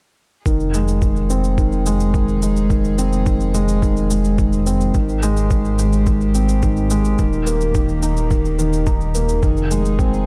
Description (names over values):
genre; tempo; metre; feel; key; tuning
piano and strings electronica; 107 BPM; 4/4; straight; F minor; A4 = 438 Hz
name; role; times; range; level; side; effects
rich chamber string section; sustained chords; 0.5-10.3 s; Eb3 to C5; -41 LUFS; equal; none
felt-muted upright piano; riff; 0.5-10.3 s; Eb3 to Eb4; -22 LUFS; equal; low-pass filter
dark detuned saw bass; bass; 0.5-10.3 s; Eb1 to Ab1; -22 LUFS; equal; sidechain pumping
electronic kick drum; drums; 0.5-10.1 s; none; -21 LUFS; equal; studio reverb
shaker; drums; 0.5-10.2 s; none; -35 LUFS; equal; studio reverb
room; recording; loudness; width
light reverb, studio reverb; dark, warm production; -18 LUFS; mono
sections
0.5-10.3 A section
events
fade-in on string section 0.5-10.3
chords
0.5 Fm7; 4.9 Abmaj7; 7.2 Eb; 9.4 Fm7